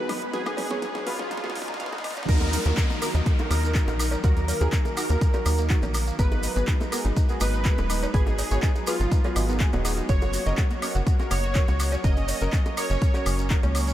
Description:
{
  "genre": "progressive house",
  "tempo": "123 BPM",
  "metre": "4/4",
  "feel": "straight",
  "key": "Eb minor",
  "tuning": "A4 = 440 Hz",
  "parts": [
    { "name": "soft supersaw", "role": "melody", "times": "0.0-13.4 s", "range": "F4 to Eb5", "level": "-32 LUFS", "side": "right 1 dB", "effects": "sidechain pumping, diffuse ambient delay" },
    { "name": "glassy wavetable pluck", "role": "second line", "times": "0.0-13.4 s", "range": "F4 to Eb5", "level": "-41 LUFS", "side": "right 4 dB", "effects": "none" },
    { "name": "lush unison pad", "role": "sustained chords", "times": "0.0-13.9 s", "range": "Ab2 to Cb5", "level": "-37 LUFS", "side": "equal", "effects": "chorus, vintage 12-bit sampler grit, sidechain pumping" },
    { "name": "tight sequenced synth", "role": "arpeggios", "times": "0.0-13.9 s", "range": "Bb3 to F5", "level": "-34 LUFS", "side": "equal", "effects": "chorus, vintage 12-bit sampler grit, sidechain pumping, diffuse ambient delay" },
    { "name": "deep mellow chord stab", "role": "stabs", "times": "0.0-13.9 s", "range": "Cb4 to Bb4", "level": "-34 LUFS", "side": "right 1 dB", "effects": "chorus, sidechain pumping, diffuse ambient delay" },
    { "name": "riser, swell and downlifter", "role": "sound effects", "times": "0.1-6.2 s", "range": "none", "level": "-37 LUFS", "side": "right 1 dB", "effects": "none" },
    { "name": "pop drum kit", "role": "drums", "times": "0.1-13.9 s", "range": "crash cymbal, handclaps, hi-hat, snare drum, woodblock", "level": "-33 LUFS", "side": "left 1 dB", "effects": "overdrive, sidechain pumping on hats, sidechain pumping on perc, sidechain pumping on cymbals" },
    { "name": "bongos, cowbell and congas", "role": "percussion", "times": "0.5-13.7 s", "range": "none", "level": "-39 LUFS", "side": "equal", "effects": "none" },
    { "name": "tight sequencer bass", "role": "bass", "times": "2.3-13.9 s", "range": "Eb1 to Eb2", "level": "-25 LUFS", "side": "equal", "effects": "sidechain pumping" },
    { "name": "electronic kick drum", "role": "drums", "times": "2.3-13.6 s", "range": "none", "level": "-22 LUFS", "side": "equal", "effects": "overdrive" },
    { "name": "maracas", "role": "percussion", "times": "2.3-13.9 s", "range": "none", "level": "-38 LUFS", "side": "right 4 dB", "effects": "none" }
  ],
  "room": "moderate huge ambient reverb, RT60 8.4 s",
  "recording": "dreamy mix soaked in reverb, high-pass filter",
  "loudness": "-22 LUFS",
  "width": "side -13 dB against mid",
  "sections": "0.0-2.3 A section; 2.3-13.9 B section",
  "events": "build-up 0.0-2.3; drum fill 0.0-2.3; filter sweep on synth arpeggio sound 0.0-2.3; filter sweep on synth stab 0.0-2.3; filter sweep 0.0-2.3; swell 1.3-2.3; drop 2.3-13.9",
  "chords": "0.0 Abm7; 2.3 Ebm; 6.2 Abm7; 10.1 Gb"
}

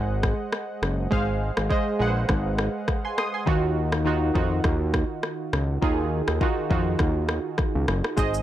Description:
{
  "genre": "afrobeats",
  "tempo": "102 BPM",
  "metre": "4/4",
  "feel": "swing 55% on 16ths",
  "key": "Eb dorian",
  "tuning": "A4 = 440 Hz",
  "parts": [
    { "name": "warm analog keys", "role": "accompaniment", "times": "0.0-8.4 s", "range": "Eb3 to Eb6", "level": "-26 LUFS", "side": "right 2 dB", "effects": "chorus, plate reverb" },
    { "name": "fat analog bass", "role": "bass", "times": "0.0-8.4 s", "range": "Gb1 to F2", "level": "-25 LUFS", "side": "equal", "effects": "none" },
    { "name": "afro-pop drum kit", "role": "drums", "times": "0.2-8.4 s", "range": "kick drum, rim click, shaker", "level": "-26 LUFS", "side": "left 1 dB", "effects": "none" }
  ],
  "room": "light reverb",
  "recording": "none",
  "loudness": "-22 LUFS",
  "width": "side -12 dB against mid",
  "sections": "0.0-8.4 A section",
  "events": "break 0.0-8.2",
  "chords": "0.0 Ab; 3.5 Ebmadd9"
}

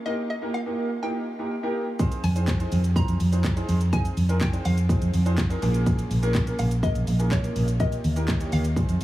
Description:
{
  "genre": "dance-pop",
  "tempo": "124 BPM",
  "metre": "4/4",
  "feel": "straight",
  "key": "F minor",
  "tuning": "A4 = 444 Hz",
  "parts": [
    { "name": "hollow square pluck", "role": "melody", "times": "0.0-9.0 s", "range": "Db5 to Bb5", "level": "-35 LUFS", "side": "left 2 dB", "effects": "chorus, tape echo" },
    { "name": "warm concert grand piano", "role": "accompaniment", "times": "0.1-9.0 s", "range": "Bb3 to Eb5", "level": "-30 LUFS", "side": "right 1 dB", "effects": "wide subtle chorus, sidechain pumping" },
    { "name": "house drum kit", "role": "drums", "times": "2.0-9.0 s", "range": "handclaps, hi-hat, kick drum, shaker", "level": "-27 LUFS", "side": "equal", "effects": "none" },
    { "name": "vintage muted fingered electric bass", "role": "bass", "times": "2.2-9.0 s", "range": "Bb1 to F2", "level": "-23 LUFS", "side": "equal", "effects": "sidechain pumping" }
  ],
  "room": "light reverb",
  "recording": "small room ambience",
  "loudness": "-22 LUFS",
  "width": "side -15 dB against mid",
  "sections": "0.0-9.0 A section",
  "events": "none",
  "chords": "0.1 Ebadd9; 2.0 Fm7; 5.6 Bbm7; 7.8 Ebadd9"
}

